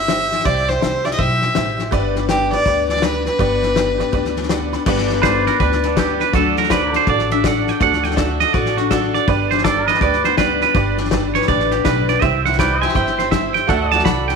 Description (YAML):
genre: honky-tonk and classic country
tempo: 163 BPM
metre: 4/4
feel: swing 63% on 8ths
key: G major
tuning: A4 = 439 Hz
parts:
  - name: clear fiddle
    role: melody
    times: 0.0-4.5 s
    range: G4 to E5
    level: -19 LUFS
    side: equal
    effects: none
  - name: picked steel-string acoustic guitar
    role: accompaniment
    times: 0.0-14.4 s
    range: G2 to B4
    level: -23 LUFS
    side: left 11 dB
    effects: none
  - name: tack piano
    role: accompaniment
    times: 0.0-14.4 s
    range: D4 to B5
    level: -24 LUFS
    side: right 11 dB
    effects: none
  - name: upright bass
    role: bass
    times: 0.0-14.4 s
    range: G1 to D2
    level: -23 LUFS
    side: right 1 dB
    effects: none
  - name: natural country drum kit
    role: drums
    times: 0.1-14.3 s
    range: crash cymbal, hi-hat, kick drum, snare drum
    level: -22 LUFS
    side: left 4 dB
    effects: none
  - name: twangy electric guitar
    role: second line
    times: 5.2-14.4 s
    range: D4 to B5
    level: -18 LUFS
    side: right 10 dB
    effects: none
  - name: pedal steel guitar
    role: sustained chords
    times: 5.2-14.4 s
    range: A4 to E5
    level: -24 LUFS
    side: equal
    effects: none
room: moderate echo chamber reverb, RT60 1.4 s, studio reverb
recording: 1960s-style stereo with parts hard left and right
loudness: -15 LUFS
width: side -5 dB against mid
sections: 0.0-4.9 A section; 4.9-14.4 B section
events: honky-tonk piano fill 4.3-4.9; clean electric guitar solo 4.9-14.4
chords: 0.0 C; 1.9 G; 6.3 D; 9.3 G; 12.2 C; 13.7 D